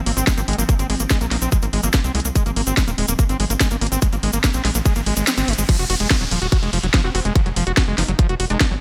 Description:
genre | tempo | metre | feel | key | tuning
psychedelic trance | 144 BPM | 4/4 | straight | unclear | A4 = 439 Hz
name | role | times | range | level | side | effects
pulsing gated texture | sustained chords | 0.0-5.7 s | F3 to C4 | -35 LUFS | equal | none
screaming distorted acid line | riff | 0.1-8.7 s | F3 to Gb4 | -27 LUFS | equal | distortion, chorus, sidechain pumping, delay
tight sequencer bass | bass | 0.1-8.8 s | Eb1 to C2 | -25 LUFS | equal | none
drum and bass drum kit | drums | 0.1-8.7 s | crash cymbal, hi-hat, snare drum | -26 LUFS | equal | none
tube shaker | percussion | 0.2-5.7 s | none | -30 LUFS | equal | none
electronic kick drum | drums | 0.3-8.7 s | none | -19 LUFS | equal | none
resonant blip pluck | second line | 0.4-1.4, 7.0-8.6 s | C4 to Eb4 | -35 LUFS | equal | chorus, sidechain pumping, high-pass filter, delay
riser and downlifter | sound effects | 4.2-8.8 s | none | -33 LUFS | equal | none
room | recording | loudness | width
digital ambience | none | -19 LUFS | mono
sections
0.0-5.7 A section; 5.7-8.8 B section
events
kick drops out 5.3-5.7; band accent 5.3; drop 5.7-8.8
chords
0.0 Ab5; 5.7 Ebmadd9 (rootless)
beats
0.27 | 0.69 1.10 1.52 1.94 | 2.35 2.77 3.19 3.60 | 4.02 4.44 4.86 5.27 | 5.69 6.11 6.52 6.94 | 7.36 7.77 8.19 8.61

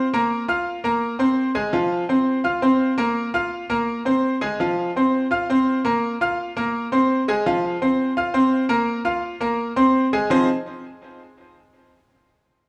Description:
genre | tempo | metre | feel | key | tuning
latin | 168 BPM | 4/4 | straight | F minor | A4 = 440 Hz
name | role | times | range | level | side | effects
bright concert grand piano | solo | 0.0-10.5 s | F3 to F6 | -21 LUFS | equal | tape echo
room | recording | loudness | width
moderate studio reverb, RT60 0.8 s | heard from further back in the room, small room ambience | -21 LUFS | mono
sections
0.0-10.3 A section; 10.3-11.7 B section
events
none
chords
0.3 C7sus4; 1.7 F5; 3.2 C7sus4; 4.6 F5; 6.0 C7sus4; 7.5 F5; 8.9 C7sus4; 10.3 Fm7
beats
| 0.31 0.67 1.03 1.38 | 1.74 2.10 2.46 2.81 | 3.17 3.53 3.88 4.24 | 4.60 4.96 5.31 5.67 | 6.03 6.38 6.74 7.10 | 7.45 7.81 8.17 8.53 | 8.88 9.24 9.60 9.95 | 10.31

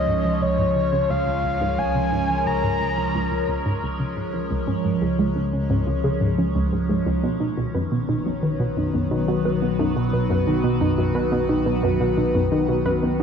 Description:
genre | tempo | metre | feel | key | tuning
ambient, sequencer-driven space music | 88 BPM | 4/4 | straight | unclear | A4 = 439 Hz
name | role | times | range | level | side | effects
breathy flute-like synth lead | melody | 0.0-3.8 s | C#5 to A#5 | -24 LUFS | left 1 dB | chorus, analog delay
evolving wavetable pad | sustained chords | 0.0-13.2 s | D#3 to C#5 | -24 LUFS | left 1 dB | chorus, built-in reverb, phaser
analog drone | bass | 0.0-13.2 s | B1 to C#2 | -29 LUFS | equal | chorus
analog pluck | riff | 0.1-13.2 s | C#2 to E#3 | -25 LUFS | equal | chorus, cassette tape, analog delay
warbly dusty pluck | arpeggios | 4.5-13.2 s | G#3 to B4 | -26 LUFS | right 2 dB | chorus, auto-pan, analog delay
room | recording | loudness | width
wet plate reverb, RT60 2.5 s | worn, warbling old tape, cassette tape, warbly pitch drift | -20 LUFS | side -7 dB against mid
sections
0.0-13.2 A section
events
filter sweep on synth arpeggio sound 0.0-13.2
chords
0.0 C#; 7.2 B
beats
0.42 1.10 | 1.78 2.46 3.14 3.83 | 4.51 5.19 5.87 6.55 | 7.24 7.92 8.60 9.28 | 9.96 10.64 11.33 12.01 | 12.69

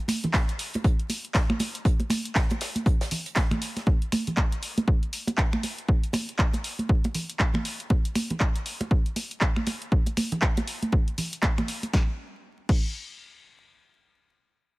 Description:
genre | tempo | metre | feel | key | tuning
house | 119 BPM | 4/4 | swing 60% on 16ths | none | none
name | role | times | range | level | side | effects
natural country drum kit | drums | 0.1-3.9 s | hi-hat, snare drum | -39 LUFS | right 2 dB | high-pass filter on hats, high-pass filter on snare, high-pass filter on room
punchy analog drum machine | drums | 0.1-12.8 s | crash cymbal, finger snaps, handclaps, hi-hat, snare drum | -30 LUFS | equal | none
congas | percussion | 0.1-11.9 s | none | -28 LUFS | right 2 dB | sidechain pumping on perc
electronic kick drum | drums | 0.3-12.8 s | none | -23 LUFS | equal | none
room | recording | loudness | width
little or no reverb | vinyl crackle | -24 LUFS | side -22 dB against mid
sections
0.0-11.9 A section; 11.9-14.0 B section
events
none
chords
none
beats
0.34 0.84 1.35 | 1.85 2.36 2.86 3.36 | 3.87 4.37 4.88 5.38 | 5.88 6.39 6.89 7.40 | 7.90 8.41 8.91 9.41 | 9.92 10.42 10.93 11.43 | 11.94 12.44

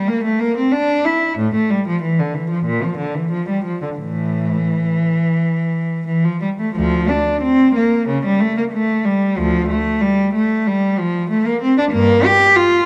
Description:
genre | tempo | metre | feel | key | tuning
classical, baroque-style suite movement for unaccompanied cello | 85-96 BPM | 4/4 | rubato | unclear | A4 = 440 Hz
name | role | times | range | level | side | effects
rich cello | solo | 0.0-12.9 s | D2 to G4 | -17 LUFS | equal | none
room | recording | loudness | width
moderate recital hall reverb, RT60 1.6 s | dark, warm production | -17 LUFS | mono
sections
0.0-6.8 A section; 6.8-12.9 B section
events
none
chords
none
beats
0.10 0.74 | 1.39 2.03 2.66 3.31 | 3.99 4.69 5.38 6.08 | 6.77 7.43 8.09 8.73 | 9.38 10.03 10.68 11.31 | 11.94 12.57

